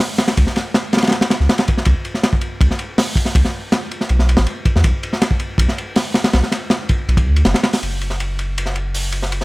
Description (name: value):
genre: drum and bass, jungle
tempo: 161 BPM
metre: 4/4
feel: straight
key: F# minor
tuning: A4 = 440 Hz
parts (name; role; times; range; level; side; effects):
- crunchy breakbeat drum kit; drums; 0.2-9.4 s; hi-hat, kick drum, ride cymbal, snare drum; -16 LUFS; equal; high-pass filter on kick, high-pass filter on cymbals, high-pass filter on hats, high-pass filter on snare, high-pass filter on room
- saturated sub bass; bass; 0.4-9.4 s; F#1 to E2; -16 LUFS; equal; none
room: little or no reverb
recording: none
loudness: -15 LUFS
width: side -23 dB against mid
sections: 0.0-7.8 A section; 7.8-9.4 B section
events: drop 0.0-7.8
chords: none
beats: 0.00 | 0.37 0.74 1.12 1.49 | 1.86 2.23 2.61 2.98 | 3.35 3.73 4.10 4.47 | 4.84 5.22 5.59 5.96 | 6.33 6.71 7.08 7.45 | 7.83 8.20 8.57 8.94 | 9.32